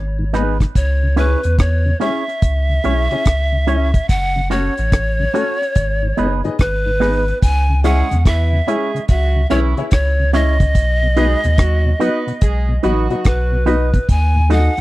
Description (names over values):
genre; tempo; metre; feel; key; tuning
roots reggae; 72 BPM; 4/4; swing 64% on 16ths; C# minor; A4 = 438 Hz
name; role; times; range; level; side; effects
breathy bright pan flute; melody; 0.0-14.8 s; B4 to G#5; -21 LUFS; equal; tape echo
warm sub bass; bass; 0.0-14.8 s; F#1 to E2; -16 LUFS; equal; none
tonewheel organ; accompaniment; 0.2-14.8 s; D#2 to F#4; -23 LUFS; left 1 dB; chorus vibrato, slow rotary speaker
electric guitar with an envelope filter; accompaniment; 0.3-14.7 s; B3 to D#5; -24 LUFS; right 7 dB; tape echo
clear upright piano; stabs; 0.3-14.7 s; B3 to E5; -23 LUFS; left 6 dB; none
deep reggae drum kit; drums; 0.3-14.8 s; hi-hat, kick drum, rim click; -14 LUFS; equal; none
warm horn section; second line; 7.8-13.6 s; E3 to B4; -25 LUFS; right 4 dB; tape echo
room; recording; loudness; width
little or no reverb; dry, close 1970s-style studio recording; -14 LUFS; side -18 dB against mid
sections
0.0-7.4 A section; 7.4-14.8 B section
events
none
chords
0.0 G#m; 0.8 C#m; 4.1 F#m; 5.8 G#m; 7.4 C#m; 10.8 B; 14.1 D#dim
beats
| 0.75 1.59 2.42 3.25 | 4.09 4.92 5.75 6.59 | 7.42 8.26 9.09 9.92 | 10.75 11.59 12.42 13.25 | 14.09